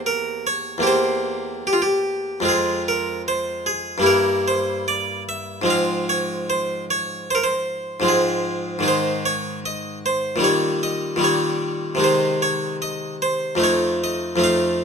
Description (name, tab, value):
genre	classical, baroque-style suite movement for harpsichord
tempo	75 BPM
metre	4/4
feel	rubato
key	F minor, Ab major from 8.8 s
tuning	A4 = 440 Hz
part	harpsichord	solo	0.0-14.8 s	E2 to F5	-19 LUFS	equal	none
room	moderate stone room reverb, RT60 1.0 s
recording	minimal, uncompressed stereo recording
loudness	-19 LUFS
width	side -6 dB against mid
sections	0.0-14.8 A section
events	none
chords	0.0 C7/E; 2.4 Fm; 4.0 Edim/G; 5.7 Fm/Ab; 8.8 Ab5; 10.4 Eb7/Bb; 12.0 Ab/C; 13.6 F7